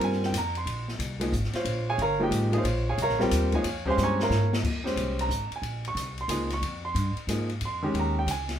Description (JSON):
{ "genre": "modal jazz", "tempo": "181 BPM", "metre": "3/4", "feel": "swing 65% on 8ths", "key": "Bb dorian from 4.6 s", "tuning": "A4 = 436 Hz", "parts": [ { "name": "clear baby grand piano", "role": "accompaniment", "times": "0.0-8.5 s", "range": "Eb3 to Db6", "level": "-27 LUFS", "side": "right 1 dB", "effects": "none" }, { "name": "upright bass", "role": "bass", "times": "0.0-8.6 s", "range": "G1 to Ab2", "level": "-29 LUFS", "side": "equal", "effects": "none" }, { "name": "open jazz drum kit", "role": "drums", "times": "0.0-8.5 s", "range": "crash cymbal, hi-hat, kick drum, ride cymbal, snare drum", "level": "-34 LUFS", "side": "left 3 dB", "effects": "none" } ], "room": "moderate studio ambience, RT60 0.5 s", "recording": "band playing live in one room", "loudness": "-25 LUFS", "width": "side -10 dB against mid", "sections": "0.0-4.6 A section; 4.6-8.6 A section", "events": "drum fill 4.0-4.6", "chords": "0.0 Fmadd9; 0.7 Bbm9" }